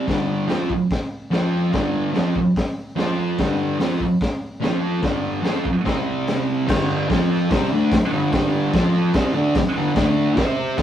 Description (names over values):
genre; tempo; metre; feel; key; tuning
garage rock duo or trio; 145 BPM; 4/4; straight; unclear; A4 = 440 Hz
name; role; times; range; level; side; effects
thick fuzz guitar; riff; 0.0-10.8 s; G2 to C5; -19 LUFS; equal; distortion
crunchy breakbeat drum kit; drums; 0.1-10.8 s; crash cymbal, hi-hat, kick drum, snare drum; -23 LUFS; equal; none
room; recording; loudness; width
moderate small room reverb, RT60 0.6 s; rough rehearsal-room recording; -18 LUFS; side -10 dB against mid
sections
0.0-6.7 A section; 6.7-10.8 B section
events
none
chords
0.1 G5; 1.3 F5; 1.7 G5; 3.0 F5; 3.4 G5; 4.6 F5; 5.0 G5; 5.9 C5; 6.7 G5; 7.1 F5; 7.5 G5; 8.7 F5; 9.2 G5; 10.0 D5; 10.4 C5